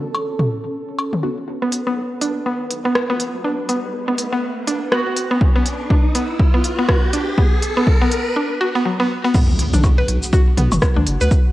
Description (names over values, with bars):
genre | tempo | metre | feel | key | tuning
minimal techno | 122 BPM | 4/4 | swing 59% on 16ths | B minor | A4 = 440 Hz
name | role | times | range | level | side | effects
bubbling stepped-filter texture | texture | 0.0-11.5 s | F#3 to B4 | -29 LUFS | right 1 dB | chorus, built-in reverb, sidechain pumping
electronic cowbell and toms | percussion | 0.1-1.2, 9.7-11.0 s | none | -22 LUFS | left 1 dB | overdrive, cassette tape, tape echo
filtered dub chord stab | stabs | 1.2-1.4 s | B3 to F#4 | -29 LUFS | left 1 dB | phaser, wide subtle chorus, tape echo
riser and impact | sound effects | 2.6-11.3 s | none | -25 LUFS | equal | none
mallet-like synth pluck | riff | 1.6-11.2 s | F#3 to B4 | -21 LUFS | equal | chorus, sidechain pumping, tape echo
techno drum kit | drums | 1.7-11.4 s | crash cymbal, hi-hat, rim click, shaker | -23 LUFS | equal | cassette tape
saturated sub bass | bass | 1.9-11.3 s | F#1 to D2 | -23 LUFS | equal | sidechain pumping, high-pass filter
glassy wavetable pluck | melody | 4.9-5.1 s | F#4 | -26 LUFS | right 4 dB | chorus, cassette tape, tape echo
electronic kick drum | drums | 5.4-11.4 s | none | -15 LUFS | equal | cassette tape
room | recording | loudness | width
moderate lush hall reverb, RT60 1.7 s | home recording on cassette | -16 LUFS | side -16 dB against mid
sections
0.0-1.5 A section; 1.5-9.3 B section; 9.3-11.5 C section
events
build-up 1.5-9.3; filter sweep on synth arpeggio sound 1.5-9.3; riser 2.6-8.4; break 8.4-9.3; drop 9.3-11.5; impact 9.3-11.3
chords
0.0 N.C.; 9.3 B5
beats
0.00 0.49 0.98 | 1.48 1.97 2.46 2.95 | 3.44 3.94 4.43 4.92 | 5.41 5.90 6.39 6.89 | 7.38 7.87 8.36 8.85 | 9.35 9.84 10.33 10.82 | 11.31